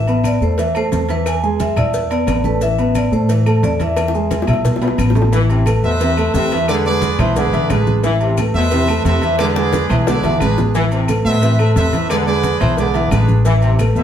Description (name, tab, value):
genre	latin, salsa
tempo	177 BPM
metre	4/4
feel	straight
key	A harmonic minor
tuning	A4 = 441 Hz
part	vibraphone with medium hard mallets	melody	0.0-5.0 s	B4 to G#5	-22 LUFS	left 2 dB	plate reverb
part	dark baby grand piano	accompaniment	0.0-14.0 s	E3 to E6	-19 LUFS	right 1 dB	none
part	upright bass	bass	0.0-14.0 s	A1 to A2	-18 LUFS	left 1 dB	none
part	agogo bells and timbales	percussion	0.1-14.0 s	none	-28 LUFS	right 2 dB	none
part	congas	percussion	0.1-14.0 s	none	-24 LUFS	equal	none
part	maracas	percussion	0.1-14.0 s	none	-39 LUFS	left 6 dB	none
part	claves	percussion	0.2-14.0 s	none	-34 LUFS	left 6 dB	none
part	cowbell and bongos	percussion	0.2-14.0 s	none	-26 LUFS	left 1 dB	none
part	brilliant trombone section	second line	5.3-14.0 s	B2 to E3	-22 LUFS	left 1 dB	none
part	bright trumpet section	melody	5.8-14.0 s	D4 to E5	-21 LUFS	right 2 dB	plate reverb
room	wet studio reverb, RT60 0.9 s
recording	heard from further back in the room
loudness	-13 LUFS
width	side -9 dB against mid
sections	0.0-5.3 A section; 5.3-14.0 B section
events	drum fill 4.0-5.3, 9.4-10.7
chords	0.0 Amadd9; 1.3 E7; 2.6 Amadd9; 4.0 E; 5.3 Amadd9; 6.7 E7; 8.0 Amadd9; 9.4 E7; 10.7 Amadd9; 12.1 E7; 13.4 Amadd9